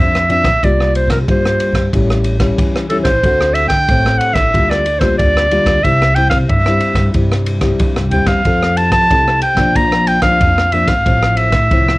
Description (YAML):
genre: samba and choro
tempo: 92 BPM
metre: 4/4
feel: straight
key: unclear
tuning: A4 = 441 Hz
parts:
  - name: bright clarinet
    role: melody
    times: 0.0-12.0 s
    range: A4 to Bb5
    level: -14 LUFS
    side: equal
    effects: cassette tape
  - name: nylon-string guitar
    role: accompaniment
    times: 0.0-12.0 s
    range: G2 to A4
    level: -18 LUFS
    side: left 2 dB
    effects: cassette tape
  - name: upright bass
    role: bass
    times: 0.0-12.0 s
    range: Ab1 to F3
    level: -18 LUFS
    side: equal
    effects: none
  - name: open jazz drum kit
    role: drums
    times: 0.1-12.0 s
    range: kick drum, ride cymbal, rim click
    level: -17 LUFS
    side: equal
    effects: cassette tape
room: light reverb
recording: home recording on cassette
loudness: -11 LUFS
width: side -21 dB against mid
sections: 0.0-12.0 A section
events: none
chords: 0.0 Bbadd9; 0.6 C7sus4; 1.9 A7; 3.2 D7; 4.5 Gm7/D; 5.8 C; 8.5 Fmaj7; 9.8 Bb; 11.1 Fmaj7/A